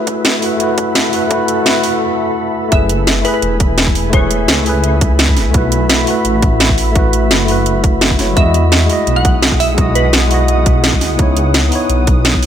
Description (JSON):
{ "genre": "liquid drum and bass", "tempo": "170 BPM", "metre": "4/4", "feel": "straight", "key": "F# dorian", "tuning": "A4 = 439 Hz", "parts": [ { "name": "tine electric piano", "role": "accompaniment", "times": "0.0-12.5 s", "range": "G#3 to D#5", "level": "-16 LUFS", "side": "equal", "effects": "auto-pan, low-pass filter, dub echo" }, { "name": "glassy FM pad", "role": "sustained chords", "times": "0.0-12.5 s", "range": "A3 to D#6", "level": "-21 LUFS", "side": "left 1 dB", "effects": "ensemble chorus, built-in reverb, sidechain pumping" }, { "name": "dark detuned saw bass", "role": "bass", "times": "0.0-12.5 s", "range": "E1 to E2", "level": "-16 LUFS", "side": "equal", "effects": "high-pass filter" }, { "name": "drum and bass drum kit", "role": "drums", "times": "0.1-12.5 s", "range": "hi-hat, snare drum", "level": "-15 LUFS", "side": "equal", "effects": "overdrive" }, { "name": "electronic kick drum", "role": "drums", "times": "0.1-12.4 s", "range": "none", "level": "-14 LUFS", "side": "equal", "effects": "overdrive, high-pass filter on kick" }, { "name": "glassy wavetable pluck", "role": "melody", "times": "2.7-4.4, 8.4-10.4 s", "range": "B4 to F#5", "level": "-20 LUFS", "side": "equal", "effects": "chorus, dub echo" } ], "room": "light reverb, digital ambience", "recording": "none", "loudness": "-10 LUFS", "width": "side -9 dB against mid", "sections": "0.0-2.7 A section; 2.7-12.5 B section", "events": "build-up 0.0-2.7; break 2.0-2.7; drop 2.7-12.5", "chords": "0.0 B7sus4; 2.7 F#m11; 5.5 B7sus4; 8.4 Emaj9; 11.2 C#m9" }